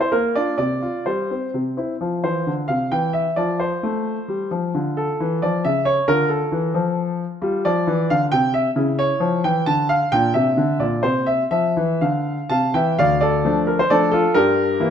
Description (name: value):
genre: classical-period piano sonatina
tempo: 132 BPM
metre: 3/4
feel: rubato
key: F major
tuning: A4 = 440 Hz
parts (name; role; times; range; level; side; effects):
- clear concert grand piano; solo; 0.0-14.9 s; D2 to A5; -18 LUFS; equal; none
room: light reverb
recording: close, detailed microphones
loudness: -18 LUFS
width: side -8 dB against mid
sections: 0.0-2.0 A section; 2.0-13.0 B section; 13.0-14.9 A section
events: none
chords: 0.1 Bb; 0.6 Csus4; 1.5 C; 2.0 F5; 2.9 N.C.; 3.4 F; 4.7 Dm; 5.6 N.C.; 6.1 Dm; 7.4 G5; 8.3 N.C.; 8.8 C#dim; 9.7 N.C.; 10.1 Bb69; 11.0 N.C.; 11.5 F5; 13.0 Dm; 14.4 Edim/G